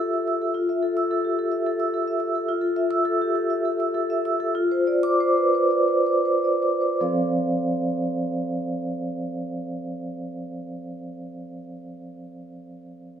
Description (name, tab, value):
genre	classical, contemporary piece for solo vibraphone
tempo	155-217 BPM (eighths)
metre	7/8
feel	rubato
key	F major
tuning	A4 = 439 Hz
part	vibraphone with medium mallets	solo	0.0-13.2 s	F3 to E6	-22 LUFS	equal	none
room	moderate scoring stage reverb, RT60 1.6 s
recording	none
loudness	-21 LUFS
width	side -8 dB against mid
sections	0.0-7.0 A section; 7.0-12.3 B section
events	slowing down 1.5-7.0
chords	0.0 Fmaj7; 4.6 Dm7/F; 7.0 F6